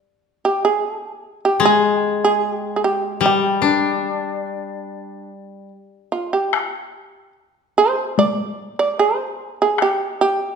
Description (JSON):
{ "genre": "japanese traditional, Japanese chamber music", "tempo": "74 BPM", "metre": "4/4", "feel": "rubato", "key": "G in sen", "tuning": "A4 = 441 Hz", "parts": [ { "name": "shamisen", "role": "melody", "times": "0.5-10.6 s", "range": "F4 to D5", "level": "-18 LUFS", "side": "right 3 dB", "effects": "none" }, { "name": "koto", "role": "accompaniment", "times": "1.6-5.7 s", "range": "G3 to D4", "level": "-19 LUFS", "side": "left 6 dB", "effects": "none" }, { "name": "taiko ensemble", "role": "percussion", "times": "6.5-10.0 s", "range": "none", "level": "-22 LUFS", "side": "left 7 dB", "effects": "none" } ], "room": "wet recital hall reverb, RT60 1.4 s", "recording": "recorded in a church or concert hall", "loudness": "-17 LUFS", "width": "side -6 dB against mid", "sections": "0.0-6.5 A section; 6.5-10.6 B section", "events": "none", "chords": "none" }